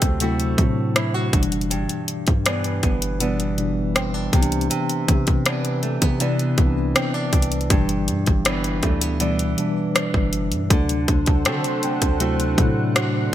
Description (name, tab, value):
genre	contemporary R&B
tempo	80 BPM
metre	4/4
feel	straight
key	G major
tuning	A4 = 441 Hz
part	mellow tine electric piano	accompaniment	0.0-13.3 s	B2 to E4	-24 LUFS	left 2 dB	medium stereo tremolo
part	nylon-string guitar	arpeggios	0.0-13.3 s	G2 to F#4	-27 LUFS	right 3 dB	wide subtle chorus, ping-pong delay
part	long sustained 808-style bass	bass	0.0-13.3 s	F#1 to D3	-25 LUFS	equal	none
part	trap drum kit	drums	0.0-13.1 s	hi-hat, kick drum, rim click	-20 LUFS	equal	none
part	lush unison pad	sustained chords	10.7-13.3 s	D4 to F#5	-27 LUFS	equal	chorus
room	light reverb, digital ambience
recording	bright 1980s-style digital production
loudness	-18 LUFS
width	side -12 dB against mid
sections	0.0-13.3 A section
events	none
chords	0.0 D7; 1.3 G6; 4.3 Cmaj9; 7.7 G6; 10.7 D7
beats	0.20 0.95 | 1.71 2.46 3.21 3.96 | 4.71 5.46 6.21 6.96 | 7.71 8.46 9.21 9.96 | 10.71 11.46 12.21 12.96